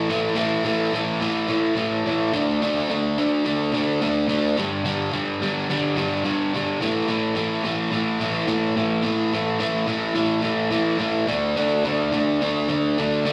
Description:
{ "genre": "rock", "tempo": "107 BPM", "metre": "4/4", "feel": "straight", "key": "unclear", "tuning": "A4 = 442 Hz", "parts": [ { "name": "overdriven electric guitar", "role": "solo", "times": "0.0-13.3 s", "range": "G2 to D4", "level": "-23 LUFS", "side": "equal", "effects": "slapback echo" } ], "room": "moderate club reverb, RT60 0.8 s", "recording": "live gig heard through the venue's PA, club reverb", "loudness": "-23 LUFS", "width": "mono", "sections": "0.0-13.3 A section", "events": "none", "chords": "0.0 A5; 2.3 D5; 4.6 G5; 6.8 A5; 11.3 D5" }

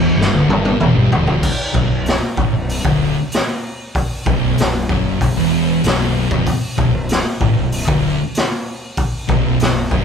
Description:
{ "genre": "stoner and doom metal", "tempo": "95 BPM", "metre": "4/4", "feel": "straight", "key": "B minor", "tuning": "A4 = 440 Hz", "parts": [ { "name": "thick fuzz guitar", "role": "riff", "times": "0.0-10.0 s", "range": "B1 to A2", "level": "-20 LUFS", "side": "left 5 dB", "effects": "distortion" }, { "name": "thick fuzz guitar", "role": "riff", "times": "0.0-10.0 s", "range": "B1 to A2", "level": "-21 LUFS", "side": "right 7 dB", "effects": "distortion" }, { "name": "thick fuzz guitar", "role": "riff", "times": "0.0-1.4 s", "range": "D2 to G2", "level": "-22 LUFS", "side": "equal", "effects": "none" }, { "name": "fuzz fingered electric bass", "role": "bass", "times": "0.0-10.0 s", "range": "B0 to A1", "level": "-23 LUFS", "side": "equal", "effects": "overdrive" }, { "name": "raw garage drum kit", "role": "drums", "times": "0.2-10.0 s", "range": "crash cymbal, hi-hat, kick drum, snare drum, toms", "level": "-18 LUFS", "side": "equal", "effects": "none" } ], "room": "moderate large studio reverb, RT60 0.9 s", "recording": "band playing live in one room", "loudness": "-14 LUFS", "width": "side -7 dB against mid", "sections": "0.0-1.4 A section; 1.4-10.0 B section", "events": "drum fill 0.2-1.4", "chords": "0.0 Cadd9 (rootless); 1.4 Bm" }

